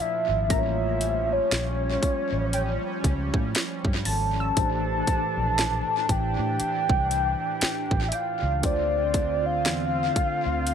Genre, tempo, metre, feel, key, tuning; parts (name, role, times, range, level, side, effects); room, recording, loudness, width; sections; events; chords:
contemporary R&B; 59 BPM; 4/4; swing 58% on 16ths; A4 = 439 Hz
soft octave-layered synth lead; melody; 0.0-10.7 s; C#5 to A5; -26 LUFS; equal; chorus, phaser, tape echo
mellow tine electric piano; accompaniment; 0.0-10.7 s; A2 to C#5; -34 LUFS; equal; medium stereo tremolo, tape echo
chorused pulse-width pad; sustained chords; 0.0-10.7 s; Bb2 to F4; -33 LUFS; right 1 dB
vintage muted fingered electric bass; bass; 0.3-10.7 s; Ab1 to A2; -29 LUFS; equal
trap drum kit; drums; 0.5-10.7 s; hi-hat, kick drum, snare drum; -27 LUFS; equal; tape echo
glassy wavetable pluck; texture; 0.5-9.1 s; G5 to E6; -39 LUFS; right 2 dB; chorus, tape echo
light reverb, digital ambience; echo-heavy mix; -23 LUFS; side -8 dB against mid
0.0-10.7 A section
0.5 A7b9b13; 4.6 Dm11/A; 8.6 Dm7